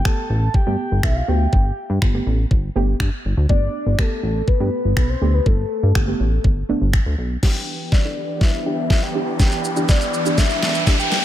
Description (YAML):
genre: dance-pop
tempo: 122 BPM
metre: 4/4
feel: straight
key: unclear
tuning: A4 = 440 Hz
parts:
  - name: soft octave-layered synth lead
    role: melody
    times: 0.0-11.2 s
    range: A4 to A5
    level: -26 LUFS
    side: left 2 dB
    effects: chorus, phaser, low-pass filter, ping-pong delay
  - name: chorused synth bass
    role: bass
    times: 0.0-7.4 s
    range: G1 to G2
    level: -19 LUFS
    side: equal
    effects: sidechain pumping
  - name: soft round pluck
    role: accompaniment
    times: 0.1-11.1 s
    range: A3 to A4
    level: -27 LUFS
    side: right 3 dB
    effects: chorus, sidechain pumping, low-pass filter
  - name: smooth R&B drum kit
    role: drums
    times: 0.1-11.2 s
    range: crash cymbal, finger snaps, kick drum, shaker, snare drum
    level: -18 LUFS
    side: equal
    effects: none
  - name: supersaw chords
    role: sustained chords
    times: 7.4-11.2 s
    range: E3 to B4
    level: -26 LUFS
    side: equal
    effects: sidechain pumping, low-pass filter
  - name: riser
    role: sound effects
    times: 8.4-11.2 s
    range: none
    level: -26 LUFS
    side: equal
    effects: none
room: light reverb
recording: none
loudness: -16 LUFS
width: side -12 dB against mid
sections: 0.0-7.4 A section; 7.4-11.2 B section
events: build-up 7.4-11.2; drum fill 7.4-11.2; filter sweep 7.4-11.2; riser 8.4-11.2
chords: 0.0 Gadd9; 7.4 Em7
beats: 0.05 0.54 1.04 | 1.53 2.02 2.51 3.00 | 3.50 3.99 4.48 4.97 | 5.46 5.95 6.45 6.94 | 7.43 7.92 8.41 8.90 | 9.40 9.89 10.38 10.87